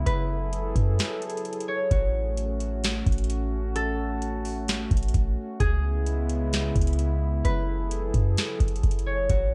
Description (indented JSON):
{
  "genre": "hip hop, atmospheric cloud-rap",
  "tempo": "130 BPM",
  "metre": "4/4",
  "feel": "half-time",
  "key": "unclear",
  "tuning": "A4 = 440 Hz",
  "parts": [
    { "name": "concert harp", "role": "melody", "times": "0.0-9.5 s", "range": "F#4 to C#5", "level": "-35 LUFS", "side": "equal", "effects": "low-pass filter, analog delay" },
    { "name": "warbly tape-like pad", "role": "sustained chords", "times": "0.0-9.5 s", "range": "C#3 to A4", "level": "-34 LUFS", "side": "equal", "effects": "chorus, built-in reverb, sidechain pumping" },
    { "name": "clean 808-style bass", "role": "bass", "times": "0.0-9.5 s", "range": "F#1 to F#2", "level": "-28 LUFS", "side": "equal", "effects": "none" },
    { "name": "booming analog drum machine", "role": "drums", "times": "0.1-9.5 s", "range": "hi-hat, kick drum, snare drum", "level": "-29 LUFS", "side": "equal", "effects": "vintage 12-bit sampler grit" }
  ],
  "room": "digital ambience",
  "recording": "none",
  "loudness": "-26 LUFS",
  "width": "mono",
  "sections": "0.0-9.5 A section",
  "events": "break 1.0-1.9",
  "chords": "0.1 F#m9; 1.9 A6; 5.6 C#m7; 7.5 F#m9"
}